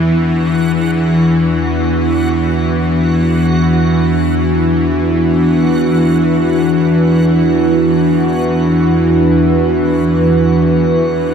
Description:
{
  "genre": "dark ambient drone",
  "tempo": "free time",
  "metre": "none",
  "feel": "none",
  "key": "unclear",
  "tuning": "A4 = 440 Hz",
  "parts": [
    { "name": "dark analog pad", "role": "sustained chords", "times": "0.3-11.3 s", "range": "E3 to B4", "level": "-14 LUFS", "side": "right 1 dB", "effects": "chorus, phaser" },
    { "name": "bowed-like drone", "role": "drone", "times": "0.0-11.3 s", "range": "E2 to E3", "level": "-13 LUFS", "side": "equal", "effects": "built-in reverb" },
    { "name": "backwards swelling texture", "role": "texture", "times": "0.0-11.3 s", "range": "F#4", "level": "-26 LUFS", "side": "right 2 dB", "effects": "built-in reverb" }
  ],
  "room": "wet huge ambient reverb, RT60 7.2 s",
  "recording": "dark, warm production",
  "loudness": "-10 LUFS",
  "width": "side -7 dB against mid",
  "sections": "0.0-11.3 A section",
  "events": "none",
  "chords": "0.0 Bm/E"
}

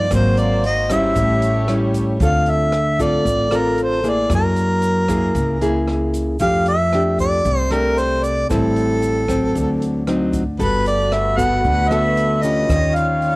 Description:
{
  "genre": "bossa nova",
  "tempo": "114 BPM",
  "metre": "4/4",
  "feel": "straight",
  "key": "unclear",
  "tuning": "A4 = 439 Hz",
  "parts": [
    { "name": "warm harmonica", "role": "melody", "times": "0.0-13.4 s", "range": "A4 to F#5", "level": "-19 LUFS", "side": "equal", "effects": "cassette tape, plate reverb" },
    { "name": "nylon-string guitar", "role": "accompaniment", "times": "0.0-13.4 s", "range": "Ab2 to A4", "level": "-20 LUFS", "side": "left 1 dB", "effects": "cassette tape" },
    { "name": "warm studio violin section", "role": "sustained chords", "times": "0.0-2.2, 10.6-13.4 s", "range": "G3 to D6", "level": "-28 LUFS", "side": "right 1 dB", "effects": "cassette tape, plate reverb" },
    { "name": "upright bass", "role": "bass", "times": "0.0-13.4 s", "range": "G1 to F#2", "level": "-21 LUFS", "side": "equal", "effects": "none" },
    { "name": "open jazz drum kit", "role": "drums", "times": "0.1-13.3 s", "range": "hi-hat, kick drum, rim click", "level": "-28 LUFS", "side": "equal", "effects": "cassette tape" },
    { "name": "egg shaker", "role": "percussion", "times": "0.1-13.4 s", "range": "none", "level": "-41 LUFS", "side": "right 3 dB", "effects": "none" }
  ],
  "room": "moderate booth ambience, RT60 0.2 s",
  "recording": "home recording on cassette",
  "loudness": "-15 LUFS",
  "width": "side -21 dB against mid",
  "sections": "0.0-2.2 A section; 2.2-13.4 B section",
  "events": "none",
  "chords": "0.1 Ab9; 1.2 A7; 2.2 Dm7; 4.3 F#9; 6.4 F69; 8.5 Am7; 9.5 D7b9; 10.6 Gmaj9; 12.7 Eb9"
}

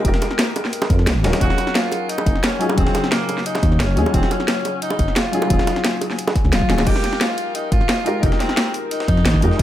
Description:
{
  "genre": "liquid drum and bass",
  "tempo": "176 BPM",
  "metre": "4/4",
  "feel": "straight",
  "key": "F phrygian",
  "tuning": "A4 = 442 Hz",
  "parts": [
    { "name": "felt-muted upright piano", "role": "accompaniment", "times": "0.0-9.6 s", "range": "Db3 to G5", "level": "-24 LUFS", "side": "left 2 dB", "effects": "ping-pong delay" },
    { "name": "dark detuned saw bass", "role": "bass", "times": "0.0-9.6 s", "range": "Eb1 to F2", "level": "-19 LUFS", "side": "equal", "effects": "tube saturation" },
    { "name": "breakbeat sampler-style drum kit", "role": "drums", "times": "0.0-9.6 s", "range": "hi-hat, snare drum", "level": "-29 LUFS", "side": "equal", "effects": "high-pass filter on hats, high-pass filter on snare" },
    { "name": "drum and bass drum kit", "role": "drums", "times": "0.0-9.6 s", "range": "crash cymbal, hi-hat, snare drum, toms", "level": "-22 LUFS", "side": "equal", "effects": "overdrive" },
    { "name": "electronic kick drum", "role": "drums", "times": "0.0-9.6 s", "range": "none", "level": "-20 LUFS", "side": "equal", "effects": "none" },
    { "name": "bongos", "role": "percussion", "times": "0.2-6.8 s", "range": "none", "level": "-26 LUFS", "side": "right 2 dB", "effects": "none" },
    { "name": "warm tenor saxophone", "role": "melody", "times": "1.4-9.6 s", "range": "Bb3 to G4", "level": "-24 LUFS", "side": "equal", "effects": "tape echo" }
  ],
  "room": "digital ambience",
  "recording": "none",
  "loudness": "-16 LUFS",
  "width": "side -12 dB against mid",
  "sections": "0.0-6.9 A section; 6.9-9.6 A section",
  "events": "drop 0.0-6.9, 6.9-9.6; drum fill 6.5-6.9",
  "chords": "0.0 Fm11; 1.2 Ebm11; 6.9 Fm11"
}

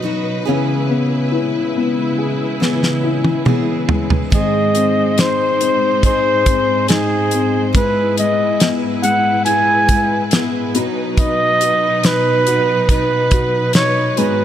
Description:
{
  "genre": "pop ballad",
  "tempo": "70 BPM",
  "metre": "4/4",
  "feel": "straight",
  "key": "unclear",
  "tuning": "A4 = 439 Hz",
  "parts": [
    { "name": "dark upright piano", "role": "accompaniment", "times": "0.0-14.4 s", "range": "G#2 to B4", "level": "-20 LUFS", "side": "left 6 dB", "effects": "none" },
    { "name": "warm studio string section", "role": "sustained chords", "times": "0.0-14.4 s", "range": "G#2 to B#4", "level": "-22 LUFS", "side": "right 1 dB", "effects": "none" },
    { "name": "picked steel-string acoustic guitar", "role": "arpeggios", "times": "0.0-14.4 s", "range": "G#2 to B4", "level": "-25 LUFS", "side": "right 9 dB", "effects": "none" },
    { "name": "damped 70s drum kit", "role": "drums", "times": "2.6-14.4 s", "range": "hi-hat, kick drum, snare drum, toms", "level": "-16 LUFS", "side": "equal", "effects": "none" },
    { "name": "warm flugelhorn", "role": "melody", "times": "4.3-14.4 s", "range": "G#4 to G#5", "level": "-16 LUFS", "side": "equal", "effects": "none" }
  ],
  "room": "light reverb",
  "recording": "none",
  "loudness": "-13 LUFS",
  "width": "side -10 dB against mid",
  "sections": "0.0-14.4 A section",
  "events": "drum fill 2.6-4.3",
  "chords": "0.5 C#m7; 4.3 G#; 7.7 E/G#; 10.7 B"
}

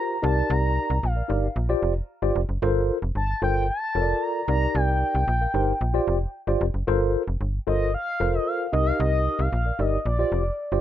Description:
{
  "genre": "early-eighties boogie funk",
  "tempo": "113 BPM",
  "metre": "4/4",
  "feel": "straight",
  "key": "C dorian",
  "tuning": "A4 = 440 Hz",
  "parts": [
    { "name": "expressive synth lead", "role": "melody", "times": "0.0-10.8 s", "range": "D5 to Bb5", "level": "-27 LUFS", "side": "left 1 dB", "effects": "chorus" },
    { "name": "mellow tine electric piano", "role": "accompaniment", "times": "0.0-10.8 s", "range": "Eb4 to F5", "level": "-25 LUFS", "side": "equal", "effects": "medium stereo tremolo" },
    { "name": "slap-like FM bass", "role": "bass", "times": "0.2-10.8 s", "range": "F1 to C2", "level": "-24 LUFS", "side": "equal", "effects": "none" }
  ],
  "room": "little or no reverb",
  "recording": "rough home demo mix",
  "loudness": "-22 LUFS",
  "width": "side -11 dB against mid",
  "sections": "0.0-10.8 A section",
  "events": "none",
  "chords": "0.2 Cm9; 1.6 Bb6; 2.6 Gm11; 4.5 Cm9; 5.8 Bb6; 6.9 Gm11; 8.7 Cm9; 10.1 Bb6"
}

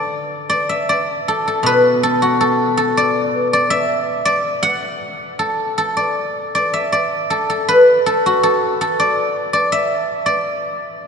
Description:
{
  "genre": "chinese traditional, Chinese solo plucked strings",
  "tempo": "79 BPM",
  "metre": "2/4",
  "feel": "rubato",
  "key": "D gong mode",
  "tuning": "A4 = 440 Hz",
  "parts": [
    { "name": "guzheng", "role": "solo", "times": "0.0-11.1 s", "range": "B2 to F#5", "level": "-15 LUFS", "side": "equal", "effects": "none" }
  ],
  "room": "wet cathedral reverb, RT60 4.8 s",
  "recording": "recorded in a church or concert hall, nothing above 11.0 kHz",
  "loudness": "-14 LUFS",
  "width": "side -6 dB against mid",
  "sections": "0.1-11.1 A section",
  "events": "none",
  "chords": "none"
}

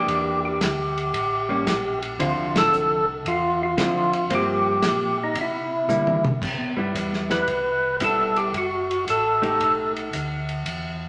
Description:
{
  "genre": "soul jazz organ trio",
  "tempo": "114 BPM",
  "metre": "4/4",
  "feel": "swing 68% on 8ths",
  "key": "C major from 6.4 s",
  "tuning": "A4 = 441 Hz",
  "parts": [
    { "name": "percussive tonewheel organ", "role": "melody", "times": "0.0-9.9 s", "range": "Eb4 to B4", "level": "-24 LUFS", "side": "equal", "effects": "slow rotary speaker, overdrive" },
    { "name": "hollow-body jazz guitar", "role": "accompaniment", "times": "0.0-10.1 s", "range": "D3 to G4", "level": "-31 LUFS", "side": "equal", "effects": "none" },
    { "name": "mellow tonewheel organ", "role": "bass", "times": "0.0-11.1 s", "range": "F#1 to D3", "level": "-35 LUFS", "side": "equal", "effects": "chorus vibrato, slow rotary speaker" },
    { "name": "warm soul drum kit", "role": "drums", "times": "0.1-10.8 s", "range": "crash cymbal, hi-hat, kick drum, ride cymbal, snare drum, toms", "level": "-31 LUFS", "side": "equal", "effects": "none" }
  ],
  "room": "wet large studio reverb, RT60 1.3 s",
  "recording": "none",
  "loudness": "-23 LUFS",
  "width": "mono",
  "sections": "0.0-6.4 A section; 6.4-11.1 B section",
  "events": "band accent 2.5; drum fill 5.9-6.4; tonewheel organ solo 6.4-11.1",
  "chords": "0.1 Em7b5; 1.1 A7b9; 2.2 Dm9; 4.3 Gm7; 5.4 C7; 6.4 Cmaj7; 8.5 F#m6; 9.6 B7alt"
}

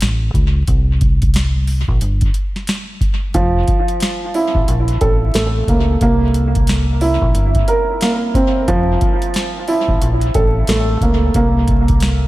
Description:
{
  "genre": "hip hop, boom-bap hip-hop",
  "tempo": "90 BPM",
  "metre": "4/4",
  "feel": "swing 62% on 16ths",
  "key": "unclear",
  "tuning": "A4 = 440 Hz",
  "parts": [
    { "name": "deep dub fingered electric bass", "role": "bass", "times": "0.0-12.3 s", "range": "F1 to C#2", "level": "-16 LUFS", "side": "equal", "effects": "none" },
    { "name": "booming analog drum machine", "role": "drums", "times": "0.0-12.2 s", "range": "hi-hat, kick drum, snare drum", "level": "-17 LUFS", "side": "equal", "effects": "none" },
    { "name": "dark upright piano", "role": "accompaniment", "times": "3.3-12.3 s", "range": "F3 to Bb4", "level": "-17 LUFS", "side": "right 2 dB", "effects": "cassette tape, high-pass filter, low-pass filter, dub echo" }
  ],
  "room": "little or no reverb",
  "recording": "echo-heavy mix, vinyl crackle",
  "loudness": "-13 LUFS",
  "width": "side -17 dB against mid",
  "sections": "0.0-12.3 A section",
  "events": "none",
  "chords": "0.0 A; 0.7 C5; 3.3 Fmaj7(no3); 4.7 A; 6.0 C7; 8.7 Fmaj7(no3); 10.0 A; 11.3 C7(no3)"
}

